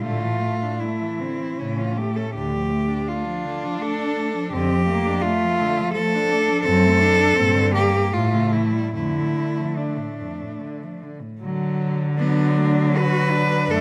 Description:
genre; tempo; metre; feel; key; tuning
classical, lyrical piece for cello ensemble; 72-86 BPM; 3/4; rubato; D minor; A4 = 443 Hz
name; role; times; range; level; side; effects
rich cello; melody; 0.0-13.8 s; D4 to B4; -25 LUFS; equal; none
clear cello; second line; 0.0-13.8 s; F2 to F#4; -31 LUFS; equal; none
rich cello; accompaniment; 0.0-13.8 s; F3 to D4; -29 LUFS; equal; none
rich cello; bass; 0.0-13.8 s; D2 to D3; -25 LUFS; equal; none
room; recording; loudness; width
moderate recital hall reverb, RT60 1.8 s; close, detailed microphones; -21 LUFS; mono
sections
0.0-11.4 A section; 11.4-13.8 B section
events
none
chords
0.0 Asus4; 1.6 A; 2.4 Dm; 4.5 Dm/F; 6.7 D7/F#; 7.4 Gm; 8.1 A7; 8.9 Dm/F; 11.4 D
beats
| 0.04 0.82 1.60 | 2.36 3.11 3.83 | 4.54 5.24 5.95 | 6.66 7.38 8.13 | 8.94 9.77 10.60 | 11.41 12.18 12.96 | 13.71

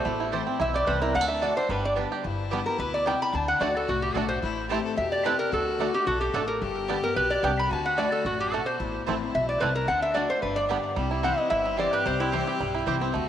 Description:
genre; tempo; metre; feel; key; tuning
bluegrass; 220 BPM; 4/4; straight; G major; A4 = 438 Hz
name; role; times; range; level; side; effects
lap resonator guitar; melody; 0.0-12.3 s; E4 to B5; -26 LUFS; equal; cassette tape, tape echo
clear fiddle; second line; 0.0-13.3 s; D4 to A4; -34 LUFS; left 7 dB; cassette tape
picked steel-string acoustic guitar; accompaniment; 0.0-13.3 s; E2 to G4; -34 LUFS; left 8 dB; cassette tape
bluegrass banjo; arpeggios; 0.0-13.3 s; G3 to G4; -32 LUFS; right 7 dB; cassette tape
upright bass; bass; 0.1-13.3 s; G1 to E2; -34 LUFS; equal; none
mandolin; stabs; 0.3-13.0 s; A3 to A5; -36 LUFS; right 7 dB; cassette tape
room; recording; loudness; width
moderate lush hall reverb, RT60 2.8 s; home recording on cassette; -24 LUFS; side -10 dB against mid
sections
0.0-2.2 A section; 2.2-11.0 A section; 11.0-13.3 B section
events
none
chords
0.1 Am; 1.1 D; 1.7 G; 3.3 D; 4.4 Am; 5.5 D; 6.6 G; 7.7 D; 8.8 Am; 9.9 D; 10.4 G; 11.0 C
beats
| 0.06 0.33 0.60 0.88 | 1.15 1.42 1.70 1.97 | 2.24 2.52 2.79 3.06 | 3.34 3.61 3.88 4.16 | 4.43 4.70 4.98 5.25 | 5.52 5.80 6.07 6.34 | 6.62 6.89 7.16 7.43 | 7.71 7.98 8.25 8.52 | 8.79 9.07 9.34 9.61 | 9.88 10.15 10.43 10.70 | 10.97 11.24 11.51 11.79 | 12.06 12.33 12.60 12.87 | 13.14

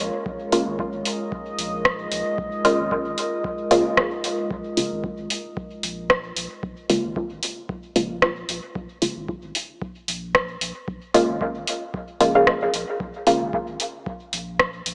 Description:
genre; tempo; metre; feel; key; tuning
dub techno; 113 BPM; 4/4; swing 56% on 16ths; Bb minor; A4 = 440 Hz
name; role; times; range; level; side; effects
deep dark ambient pad; sustained chords; 0.0-4.5 s; Ab3 to Eb5; -31 LUFS; equal; chorus, built-in reverb, sidechain pumping
filtered dub chord stab; stabs; 0.0-13.4 s; Db3 to F4; -24 LUFS; equal; chorus, phaser, sidechain pumping, dub echo
warm sub bass; bass; 0.0-14.9 s; Ab1 to Db2; -40 LUFS; equal; sidechain pumping
electronic kick drum; drums; 0.3-14.7 s; none; -36 LUFS; equal; none
booming analog drum machine; drums; 0.5-14.9 s; hi-hat, rim click; -25 LUFS; equal; none
room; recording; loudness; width
moderate echo chamber reverb, RT60 2.5 s; small speaker sound; -24 LUFS; mono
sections
0.0-4.5 A section; 4.5-14.9 A section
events
filter sweep on synth stab 0.0-4.5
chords
0.0 Bbm7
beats
| 0.26 0.79 1.32 1.85 | 2.38 2.91 3.44 3.98 | 4.51 5.04 5.57 6.10 | 6.63 7.16 7.69 8.22 | 8.76 9.29 9.82 10.35 | 10.88 11.41 11.94 12.47 | 13.00 13.53 14.06 14.60

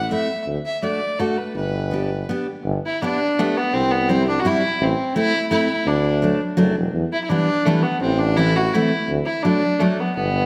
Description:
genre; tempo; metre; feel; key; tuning
alpine folk, alpine dance band; 168 BPM; 3/4; rubato; G major; A4 = 440 Hz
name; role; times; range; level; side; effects
warm fiddle; melody; 0.0-10.5 s; A3 to E5; -24 LUFS; equal; none
clear tuba; bass; 0.0-10.5 s; E1 to E2; -25 LUFS; equal; none
picked steel-string acoustic guitar; accompaniment; 0.1-10.0 s; E3 to G4; -24 LUFS; equal; none
room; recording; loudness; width
wet scoring stage reverb, RT60 1.7 s; none; -20 LUFS; mono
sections
0.0-2.6 A section; 2.6-10.5 A section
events
none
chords
0.5 D; 1.6 G; 3.7 C; 4.8 Am; 5.9 D; 6.9 Em; 8.0 Am; 9.1 D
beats
0.11 | 0.47 0.82 1.19 | 1.55 1.91 2.28 | 2.65 3.01 3.37 | 3.73 4.09 4.45 | 4.80 5.16 5.51 | 5.86 6.21 6.57 | 6.94 7.30 7.66 | 8.02 8.38 8.73 | 9.09 9.45 9.80 | 10.16

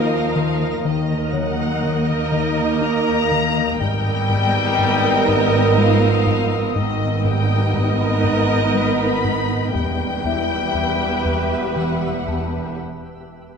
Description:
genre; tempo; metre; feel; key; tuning
cinematic, suspense film score; 60 BPM; 3/4; straight; unclear; A4 = 440 Hz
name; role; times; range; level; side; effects
muted chamber violin section; melody; 0.0-12.8 s; Eb5 to Cb6; -26 LUFS; left 5 dB; none
muted chamber violin section; second line; 0.0-12.8 s; Bb4 to E5; -24 LUFS; right 3 dB; none
muted symphonic viola section; accompaniment; 0.0-12.8 s; Bb3 to G4; -27 LUFS; equal; none
clear trombone section; sustained chords; 0.0-12.8 s; Eb3 to Cb4; -30 LUFS; right 5 dB; none
mellow French horn section; sustained chords; 0.0-12.8 s; Eb3 to Cb4; -26 LUFS; left 3 dB; none
twinkling granular texture; sustained chords; 0.0-12.8 s; Cb4 to Bb5; -30 LUFS; equal; built-in reverb
rubbery square bass; riff; 0.0-12.6 s; E2 to Eb4; -25 LUFS; left 3 dB; none
muted chamber double bass section; bass; 0.0-12.8 s; E1 to Eb2; -28 LUFS; right 3 dB; none
muted studio cello section; bass; 0.0-12.7 s; Eb2 to Ab2; -25 LUFS; right 2 dB; none
celesta; texture; 0.0-13.6 s; E4 to Eb6; -33 LUFS; left 5 dB; none
muted chamber violin section; texture; 0.0-9.2 s; Bb5 to E6; -35 LUFS; left 9 dB; none
room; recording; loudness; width
wet concert hall reverb, RT60 2.0 s; minimal, uncompressed stereo recording; -16 LUFS; side -6 dB against mid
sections
0.0-13.6 A section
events
break 12.8-13.6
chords
0.0 Ebm; 3.8 Abmadd9; 9.8 Em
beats
| 0.84 1.82 2.80 | 3.79 4.78 5.77 | 6.76 7.75 8.75 | 9.75 10.75 11.77 | 12.79

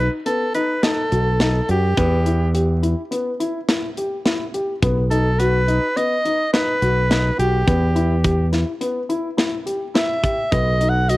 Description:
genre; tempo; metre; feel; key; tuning
progressive instrumental, band music in an uneven meter; 105 BPM; 5/4; straight; E harmonic minor; A4 = 443 Hz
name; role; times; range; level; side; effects
breathy soprano saxophone; melody; 0.0-11.2 s; G4 to F#5; -21 LUFS; equal; cassette tape
dark baby grand piano; arpeggios; 0.0-11.2 s; B3 to G4; -23 LUFS; left 2 dB; none
fingered electric bass; bass; 0.0-11.2 s; B1 to F#2; -18 LUFS; equal; none
tight metal drum kit; drums; 0.3-11.2 s; hi-hat, kick drum, snare drum; -23 LUFS; equal; none
room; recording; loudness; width
light reverb, studio reverb; home recording on cassette; -17 LUFS; side -18 dB against mid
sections
0.0-11.2 A section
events
none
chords
0.0 B; 2.0 Em; 4.8 B; 7.7 Em; 10.5 B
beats
0.26 0.83 1.40 | 1.97 2.54 3.11 3.68 4.25 | 4.82 5.39 5.96 6.53 7.10 | 7.67 8.24 8.81 9.38 9.95 | 10.52 11.09

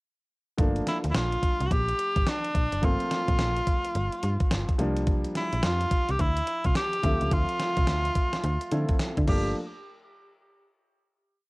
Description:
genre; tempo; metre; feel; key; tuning
R&B, new jack swing; 107 BPM; 4/4; swing 62% on 16ths; G dorian; A4 = 445 Hz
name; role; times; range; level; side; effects
clear grand piano; accompaniment; 0.6-9.6 s; F3 to E5; -34 LUFS; equal; cassette tape
slap-like FM bass; bass; 0.6-9.5 s; F#1 to D3; -28 LUFS; equal; none
crisp 8-bit digital drum machine; drums; 0.6-9.4 s; crash cymbal, hi-hat, kick drum, snare drum; -27 LUFS; equal; cassette tape
bright tenor saxophone; melody; 0.9-9.5 s; D4 to G4; -29 LUFS; equal; cassette tape
room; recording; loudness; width
light reverb; home recording on cassette; -24 LUFS; side -26 dB against mid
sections
0.6-9.6 verse; 9.6-11.5 final hit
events
none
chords
0.6 Gm7; 4.8 C7sus4; 7.0 Dm7; 9.3 Gm7; 9.6 N.C.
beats
| 0.59 1.15 1.71 2.27 | 2.83 3.39 3.95 4.51 | 5.07 5.63 6.19 6.75 | 7.32 7.88 8.44 9.00 | 9.56

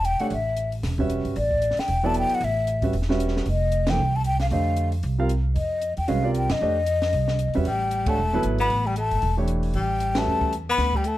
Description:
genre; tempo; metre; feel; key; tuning
modal jazz; 229 BPM; 4/4; swing 58% on 8ths; unclear; A4 = 437 Hz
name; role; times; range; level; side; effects
breathy mellow concert flute; melody; 0.0-11.2 s; D5 to B5; -25 LUFS; left 2 dB; none
upright bass; bass; 0.0-11.2 s; E1 to F#2; -25 LUFS; right 1 dB; none
compact cocktail drum kit; drums; 0.0-11.1 s; hi-hat, kick drum, ride cymbal, snare drum; -32 LUFS; equal; none
warm baby grand piano; accompaniment; 0.2-10.5 s; D3 to F#5; -27 LUFS; right 2 dB; none
breathy tenor saxophone; second line; 7.7-11.2 s; G3 to B3; -29 LUFS; left 2 dB; none
room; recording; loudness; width
little or no reverb; none; -21 LUFS; side -15 dB against mid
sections
0.0-11.2 A section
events
band accent 3.9, 6.5, 8.0, 10.1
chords
0.0 A9sus4; 3.5 F7sus2; 7.7 A9sus4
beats
0.05 | 0.31 0.57 0.84 1.10 | 1.36 1.62 1.89 2.15 | 2.41 2.67 2.94 3.20 | 3.46 3.72 3.99 4.25 | 4.51 4.77 5.03 5.29 | 5.56 5.82 6.08 6.34 | 6.60 6.87 7.13 7.39 | 7.65 7.91 8.17 8.43 | 8.70 8.96 9.22 9.48 | 9.74 10.00 10.26 10.52 | 10.79 11.05

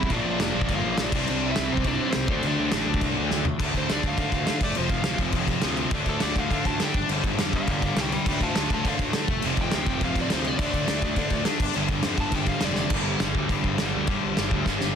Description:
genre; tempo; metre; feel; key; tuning
punk rock; 206 BPM; 4/4; straight; D minor; A4 = 440 Hz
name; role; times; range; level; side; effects
biting overdriven guitar; melody; 0.0-12.9 s; C4 to A5; -31 LUFS; equal; none
distorted electric guitar; riff; 0.0-15.0 s; F2 to D4; -29 LUFS; left 13 dB; overdrive
sludgy distorted guitar; riff; 0.0-15.0 s; F2 to D4; -30 LUFS; right 11 dB; overdrive
fuzz picked electric bass; bass; 0.0-14.9 s; F1 to D3; -31 LUFS; equal; overdrive
loose indie drum kit; drums; 0.0-14.9 s; crash cymbal, kick drum, snare drum, toms; -26 LUFS; equal; none
room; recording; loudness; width
light reverb; dense, heavily limited modern master; -22 LUFS; side -8 dB against mid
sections
0.0-3.6 A section; 3.6-12.9 B section; 12.9-15.0 C section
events
drum fill 3.3, 12.8, 14.7; overdriven electric guitar solo 3.6-12.9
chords
0.1 Bb; 1.1 C; 2.3 D5; 3.6 Dm; 4.6 F5; 5.9 Dm; 7.0 G5; 8.3 Dm; 9.3 F5; 10.6 D5; 11.6 G5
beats
| 0.11 0.40 0.69 0.98 | 1.27 1.56 1.85 2.14 | 2.44 2.73 3.02 3.31 | 3.60 3.89 4.18 4.47 | 4.77 5.06 5.35 5.64 | 5.93 6.22 6.52 6.81 | 7.10 7.39 7.68 7.97 | 8.26 8.56 8.85 9.14 | 9.43 9.72 10.01 10.30 | 10.59 10.88 11.18 11.47 | 11.76 12.05 12.34 12.63 | 12.92 13.21 13.51 13.80 | 14.09 14.38 14.67

